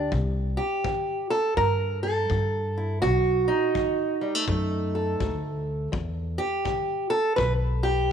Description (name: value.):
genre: acoustic country blues, solo or duo.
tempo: 83 BPM.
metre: 4/4.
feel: swing 64% on 8ths.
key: E minor.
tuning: A4 = 440 Hz.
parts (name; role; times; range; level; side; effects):
fingerpicked steel-string acoustic guitar; melody; 0.0-8.1 s; E2 to B4; -25 LUFS; right 2 dB; none.
upright bass; bass; 0.0-8.1 s; B1 to G2; -27 LUFS; left 1 dB; none.
kick drum; drums; 0.1-7.6 s; none; -34 LUFS; left 4 dB; none.
room: light reverb, studio ambience.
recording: 1960s-style stereo.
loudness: -23 LUFS.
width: side -8 dB against mid.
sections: 0.0-8.1 A section.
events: none.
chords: 0.1 C; 3.0 B7#9; 5.9 Em.